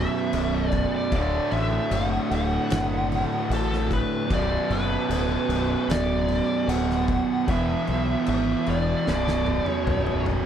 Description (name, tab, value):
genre	stoner and doom metal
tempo	75 BPM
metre	4/4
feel	straight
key	B minor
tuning	A4 = 442 Hz
part	fuzz lead guitar	melody	0.0-10.2 s	A4 to F#5	-29 LUFS	left 1 dB	wah, distortion, tape echo
part	fuzz guitar	riff	0.0-10.5 s	B1 to E3	-25 LUFS	right 2 dB	distortion
part	growling fingered electric bass	bass	0.0-10.4 s	B0 to B1	-27 LUFS	left 1 dB	overdrive
part	oversized low-tuned drum kit	drums	0.3-10.5 s	crash cymbal, kick drum, snare drum, toms	-31 LUFS	left 1 dB	none
room	little or no reverb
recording	none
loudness	-22 LUFS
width	side -9 dB against mid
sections	0.0-10.5 A section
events	drum fill 9.1-10.5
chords	0.0 B5; 1.1 D; 4.3 Bm; 7.5 E; 9.1 Bm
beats	0.33 | 1.12 1.92 2.71 3.50 | 4.30 5.09 5.89 6.69 | 7.48 8.28 9.08 9.87